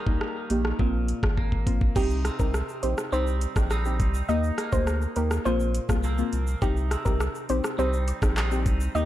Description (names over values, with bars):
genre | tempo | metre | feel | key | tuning
dancehall | 103 BPM | 4/4 | straight | C minor | A4 = 439 Hz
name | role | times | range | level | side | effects
twangy electric guitar | arpeggios | 0.0-9.1 s | Bb2 to Eb4 | -36 LUFS | right 3 dB | lush chorus, ping-pong delay
deep mellow chord stab | accompaniment | 0.1-9.1 s | Bb3 to G4 | -31 LUFS | left 2 dB | chorus
saturated sub bass | bass | 0.1-9.1 s | Ab1 to Eb2 | -27 LUFS | equal | none
island pop drum kit | drums | 0.1-9.1 s | crash cymbal, handclaps, hi-hat, kick drum, rim click, shaker | -27 LUFS | equal | none
soft round pluck | melody | 2.0-9.1 s | G4 to Eb5 | -31 LUFS | right 1 dB | chorus, ping-pong delay
woodblock and cabasa | percussion | 6.6-9.1 s | none | -46 LUFS | left 6 dB | none
room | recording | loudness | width
little or no reverb | dark, warm production | -23 LUFS | side -14 dB against mid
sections
0.0-2.0 A section; 2.0-9.1 B section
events
drum fill 1.4-2.0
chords
0.0 Eb; 0.8 Bbsus2; 2.0 Cm; 4.3 Eb; 5.5 Bbsus2; 6.6 Cm